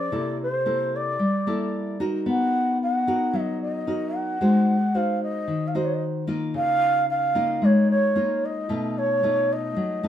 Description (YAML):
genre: bossa nova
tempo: 112 BPM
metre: 4/4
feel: straight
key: unclear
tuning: A4 = 441 Hz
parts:
  - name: breathy mellow bansuri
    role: melody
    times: 0.0-10.1 s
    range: C5 to F#5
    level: -24 LUFS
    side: right 1 dB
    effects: none
  - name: nylon-string guitar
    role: accompaniment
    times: 0.0-10.1 s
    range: B2 to C5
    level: -24 LUFS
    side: left 1 dB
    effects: none
room: wet studio reverb, RT60 0.6 s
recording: band playing live in one room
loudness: -21 LUFS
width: side -10 dB against mid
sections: 0.0-10.1 A section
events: none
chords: 0.1 C13; 2.3 Bmaj7; 4.4 Ab7; 6.6 Db69; 8.7 B7#11